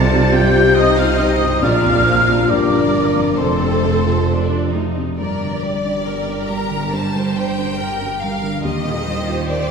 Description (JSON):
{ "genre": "cinematic, emotional film score for orchestra", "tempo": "70 BPM", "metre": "4/4", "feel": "rubato", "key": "G minor", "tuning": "A4 = 439 Hz", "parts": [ { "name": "rich studio violin section", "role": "melody", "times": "0.0-9.7 s", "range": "A4 to Bb5", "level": "-26 LUFS", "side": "left 2 dB", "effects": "none" }, { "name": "mellow large flute ensemble", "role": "second line", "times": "0.0-4.7 s", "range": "C6 to A6", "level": "-20 LUFS", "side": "equal", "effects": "none" }, { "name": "rich studio violin section", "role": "second line", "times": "0.0-9.7 s", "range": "F4 to A5", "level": "-28 LUFS", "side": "left 2 dB", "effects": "none" }, { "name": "warm clarinet", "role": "second line", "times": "0.0-4.7 s", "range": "A4 to D5", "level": "-25 LUFS", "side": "equal", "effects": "none" }, { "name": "felt-muted upright piano", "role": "accompaniment", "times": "0.0-9.7 s", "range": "Bb1 to D5", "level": "-23 LUFS", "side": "equal", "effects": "none" }, { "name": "warm studio viola section", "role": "accompaniment", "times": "0.0-9.7 s", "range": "G3 to D5", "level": "-25 LUFS", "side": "right 2 dB", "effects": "none" }, { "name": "dark French horn section", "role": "sustained chords", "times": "0.0-4.7 s", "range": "C4 to A4", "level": "-20 LUFS", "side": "left 4 dB", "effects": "none" }, { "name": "concert harp", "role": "arpeggios", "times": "0.0-9.7 s", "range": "F2 to D5", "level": "-28 LUFS", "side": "left 3 dB", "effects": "none" }, { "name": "clear studio cello section", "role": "bass", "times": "0.0-9.7 s", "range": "F2 to Eb3", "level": "-24 LUFS", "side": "right 4 dB", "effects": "none" }, { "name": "rich studio double bass section", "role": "bass", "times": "0.0-9.7 s", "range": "F1 to Eb2", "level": "-23 LUFS", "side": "right 3 dB", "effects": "none" } ], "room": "wet concert hall reverb, RT60 2.1 s", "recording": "heard from further back in the room", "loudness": "-15 LUFS", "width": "side -6 dB against mid", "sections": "0.0-5.2 A section; 5.2-9.7 A section", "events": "none", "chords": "0.0 Cmadd9; 1.6 Bb; 3.4 F; 5.2 Gm; 8.6 Ebadd9" }